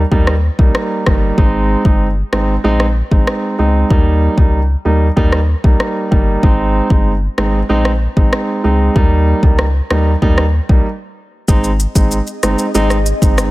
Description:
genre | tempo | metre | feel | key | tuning
dancehall | 95 BPM | 4/4 | straight | Ab major | A4 = 435 Hz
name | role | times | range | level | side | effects
saturated sub bass | bass | 0.0-13.5 s | G1 to Eb2 | -15 LUFS | equal | none
warm concert grand piano | accompaniment | 0.1-13.5 s | G3 to Eb4 | -16 LUFS | right 2 dB | sidechain pumping
deep house drum kit | drums | 0.1-13.5 s | hi-hat, kick drum, rim click, shaker | -14 LUFS | equal | none
ethereal airy pad | sustained chords | 11.9-13.5 s | C4 to Eb5 | -24 LUFS | left 2 dB | ensemble chorus, built-in reverb, sidechain pumping
room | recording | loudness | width
digital ambience | none | -11 LUFS | side -19 dB against mid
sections
0.0-11.5 A section; 11.5-13.5 B section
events
break 10.9-11.5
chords
0.0 Eb; 1.4 Ab; 3.9 Eb; 6.4 Ab; 9.0 Eb; 11.5 Ab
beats
0.12 0.75 | 1.38 2.01 2.64 3.27 | 3.90 4.54 5.17 5.80 | 6.43 7.06 7.69 8.33 | 8.96 9.59 10.22 10.85 | 11.48 12.12 12.75 13.38

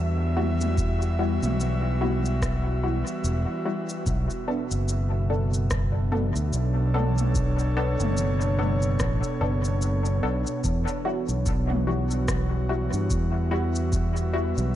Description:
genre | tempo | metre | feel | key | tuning
ambient dub | 73 BPM | 4/4 | swing 58% on 16ths | E dorian | A4 = 445 Hz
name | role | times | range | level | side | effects
airy breathy pad | sustained chords | 0.0-14.8 s | B2 to E5 | -30 LUFS | right 1 dB | chorus
filtered dub chord stab | stabs | 0.0-14.5 s | G3 to A4 | -32 LUFS | left 2 dB | lush chorus, cassette tape, dub echo
fingered electric bass | bass | 0.0-14.8 s | E1 to G2 | -25 LUFS | equal | none
wind-like tuned noise texture | texture | 0.0-10.7 s | E5 | -44 LUFS | right 4 dB | none
organic electronic drum kit | drums | 0.4-14.7 s | rim click, shaker, toms | -33 LUFS | left 1 dB | dub echo
electronic kick drum | drums | 0.8-14.1 s | none | -29 LUFS | equal | none
room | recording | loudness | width
light reverb | nothing above 11.0 kHz | -23 LUFS | side -12 dB against mid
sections
0.0-10.6 A section; 10.6-14.8 A section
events
none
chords
0.0 Emadd9; 4.1 Bm7; 10.6 Emadd9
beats
| 0.78 1.60 2.42 3.24 | 4.06 4.88 5.71 6.53 | 7.35 8.17 8.99 9.82 | 10.64 11.46 12.28 13.10 | 13.93 14.75

